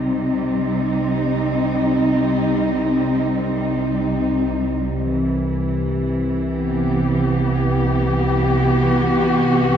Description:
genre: dark ambient drone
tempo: free time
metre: none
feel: none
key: unclear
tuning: A4 = 440 Hz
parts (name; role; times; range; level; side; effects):
- dark studio cello section; sustained chords; 0.0-9.8 s; C3 to G4; -18 LUFS; equal; none
- analog drone; drone; 0.0-9.8 s; C2 to C3; -22 LUFS; right 1 dB; chorus
room: wet plate reverb, RT60 2.5 s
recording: none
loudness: -17 LUFS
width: side -8 dB against mid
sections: 0.0-9.8 A section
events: fade-in on synth drone 0.0-9.8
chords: 0.0 Cm; 5.1 Em

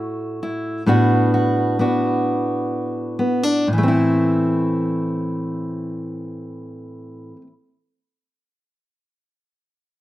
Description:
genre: folk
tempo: 41-45 BPM (dotted quarters)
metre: 6/8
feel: straight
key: A dorian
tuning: A4 = 440 Hz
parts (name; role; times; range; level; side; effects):
- fingerpicked steel-string acoustic guitar; accompaniment; 0.0-7.5 s; A2 to F#4; -18 LUFS; equal; none
room: light reverb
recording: recorded outdoors, with no room sound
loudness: -18 LUFS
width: side -15 dB against mid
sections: 0.0-3.7 A section; 3.7-6.6 B section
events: slowing down 0.0-3.7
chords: 0.0 F#m7/A; 0.9 Bm7/A; 3.7 Am

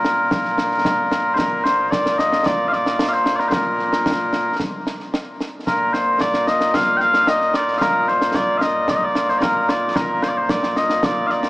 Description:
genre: scottish traditional, Scottish pipe music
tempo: 112 BPM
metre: 4/4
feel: straight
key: Bb major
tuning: A4 = 440 Hz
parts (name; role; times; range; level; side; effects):
- mellow small bagpipes; melody; 0.0-11.5 s; Bb2 to G5; -17 LUFS; equal; none
- concert snare drum and concert bass drum; drums; 0.0-11.5 s; none; -24 LUFS; equal; none
room: moderate huge ambient reverb, RT60 6.8 s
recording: heard from further back in the room, small speaker sound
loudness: -16 LUFS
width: side -21 dB against mid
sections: 0.0-1.4 A section; 1.4-11.5 A section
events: none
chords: none

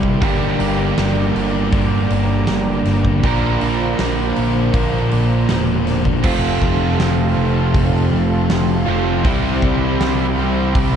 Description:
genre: rock, shoegaze and dream pop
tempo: 80 BPM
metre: 4/4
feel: straight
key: F major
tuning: A4 = 440 Hz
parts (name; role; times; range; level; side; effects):
- warm analog pad; sustained chords; 0.0-11.0 s; F4 to D6; -28 LUFS; equal; chorus
- biting overdriven guitar; riff; 0.0-11.0 s; F2 to F4; -25 LUFS; left 1 dB; none
- overdriven electric guitar; riff; 0.0-11.0 s; F2 to Bb4; -20 LUFS; right 9 dB; reverse reverb
- thick fuzz guitar; riff; 0.0-11.0 s; F2 to C4; -21 LUFS; left 8 dB; distortion, ensemble chorus
- growling picked electric bass; bass; 0.0-11.0 s; E1 to C2; -22 LUFS; equal; overdrive
- huge arena drum kit; drums; 0.0-10.9 s; crash cymbal, hi-hat, kick drum, snare drum; -22 LUFS; equal; none
room: moderate studio ambience, RT60 0.5 s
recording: cassette tape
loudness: -14 LUFS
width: side -8 dB against mid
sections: 0.0-6.2 A section; 6.2-11.0 B section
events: none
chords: 0.2 Gm; 3.2 Bbadd9; 6.2 Fadd9; 9.2 Cadd9

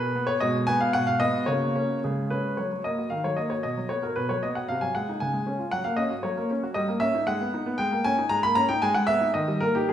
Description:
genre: classical-period piano sonatina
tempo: 115 BPM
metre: 2/4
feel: rubato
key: F# major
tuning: A4 = 440 Hz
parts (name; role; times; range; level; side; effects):
- clear baby grand piano; solo; 0.0-9.9 s; B2 to B5; -23 LUFS; equal; none
room: wet recital hall reverb, RT60 1.5 s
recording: heard from further back in the room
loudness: -23 LUFS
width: side -10 dB against mid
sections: 0.0-2.6 A section; 2.6-9.9 B section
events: none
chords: 0.4 G#m7/B; 1.5 F#/C#; 2.0 C#5; 2.6 F#; 3.1 D#m; 3.6 B5; 4.7 G#7/B#; 5.2 C#; 5.7 F#; 6.8 D#7/G; 7.3 G#m; 7.8 D#5/G#; 8.8 G#m; 9.3 D#

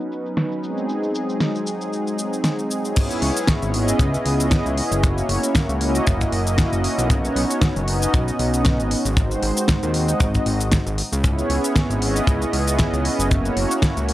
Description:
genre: nu-disco, nu disco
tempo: 116 BPM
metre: 4/4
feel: swing 55% on 16ths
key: C# dorian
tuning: A4 = 440 Hz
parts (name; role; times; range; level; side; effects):
- warm analog pad; accompaniment; 0.0-14.1 s; F#3 to D#5; -22 LUFS; equal; chorus, sidechain pumping, tape echo
- pop drum kit; drums; 0.0-14.1 s; crash cymbal, hi-hat, shaker, snare drum; -25 LUFS; equal; small room ambience
- kick drum; drums; 3.0-13.9 s; none; -21 LUFS; equal; small room ambience
- fat analog bass; bass; 3.2-14.1 s; F#1 to D#2; -23 LUFS; equal; transformer saturation
room: small room ambience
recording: dry, gritty hardware recording, low-pass filter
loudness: -18 LUFS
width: side -15 dB against mid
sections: 0.0-3.0 A section; 3.0-14.1 B section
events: filter sweep 0.0-3.0; drop 3.0-14.1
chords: 0.0 Badd9; 0.6 G#7; 3.0 C#m7; 5.0 F#7; 7.1 Badd9; 8.9 G#7; 11.2 C#m7; 13.3 F#7

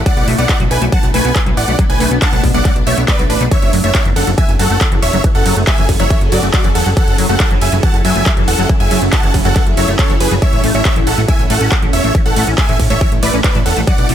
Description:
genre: uplifting trance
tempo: 139 BPM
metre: 4/4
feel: straight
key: F# minor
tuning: A4 = 441 Hz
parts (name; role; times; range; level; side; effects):
- shimmering ambient pad; sustained chords; 0.0-14.1 s; F#3 to A4; -21 LUFS; equal; chorus, built-in reverb, phaser, sidechain pumping
- plucky analog bass; bass; 0.0-14.1 s; E1 to B1; -17 LUFS; equal; sidechain pumping
- big supersaw lead; melody; 0.1-14.1 s; D4 to A5; -18 LUFS; right 1 dB; sidechain pumping, tape echo
- liquid acid bass; arpeggios; 0.1-14.1 s; E3 to C#4; -22 LUFS; left 2 dB; ensemble chorus, vintage 12-bit sampler grit, sidechain pumping, tape echo
- big-room dance drum kit; drums; 0.1-14.1 s; handclaps, hi-hat, ride cymbal; -21 LUFS; right 1 dB; overdrive
- electronic kick drum; drums; 0.1-14.0 s; none; -14 LUFS; equal; overdrive
room: little or no reverb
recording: none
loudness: -10 LUFS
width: side -10 dB against mid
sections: 0.0-14.1 A section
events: none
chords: 0.1 Bm7; 3.5 F#m7; 10.4 A

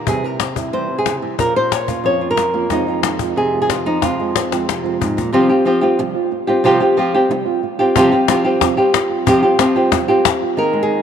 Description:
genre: flamenco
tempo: 183 BPM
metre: 4/4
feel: straight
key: unclear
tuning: A4 = 440 Hz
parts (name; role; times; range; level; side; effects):
- flamenco guitar; melody; 0.0-11.0 s; F2 to Db5; -15 LUFS; equal; none
- flamenco guitar; stabs; 0.0-11.0 s; F2 to Ab4; -23 LUFS; right 10 dB; tape echo
- cajon; percussion; 0.1-5.3, 8.0-10.4 s; none; -20 LUFS; left 9 dB; none
room: moderate plate reverb, RT60 3.4 s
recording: 1960s-style stereo with parts hard left and right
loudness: -14 LUFS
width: side -8 dB against mid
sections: 0.0-5.3 A section; 5.3-10.6 B section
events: drum fill 4.5-5.3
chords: 0.1 C; 1.4 Bbm; 2.7 Fm7; 4.0 Fm; 5.3 Csus4

